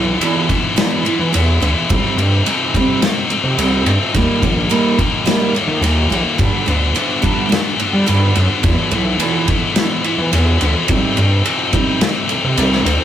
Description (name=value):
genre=quiet-loud alternative rock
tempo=107 BPM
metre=4/4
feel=straight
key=unclear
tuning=A4 = 442 Hz
part: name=picked steel-string acoustic guitar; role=arpeggios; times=0.0-13.0 s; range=E2 to C4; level=-20 LUFS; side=right 3 dB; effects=none
part: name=scooped high-gain guitar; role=riff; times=0.0-13.0 s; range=G2 to E4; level=-18 LUFS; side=left 4 dB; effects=distortion
part: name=gritty driven synth bass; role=bass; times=0.0-13.0 s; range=Bb1 to G3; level=-16 LUFS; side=equal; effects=none
part: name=loose indie drum kit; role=drums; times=0.2-13.0 s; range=kick drum, ride cymbal, snare drum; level=-19 LUFS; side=equal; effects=none
room=moderate booth ambience, RT60 0.2 s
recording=rough rehearsal-room recording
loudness=-13 LUFS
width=side -10 dB against mid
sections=0.0-13.0 A section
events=none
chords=0.0 E; 1.9 Cm; 4.1 Eb; 6.4 G; 8.7 E; 10.9 Cm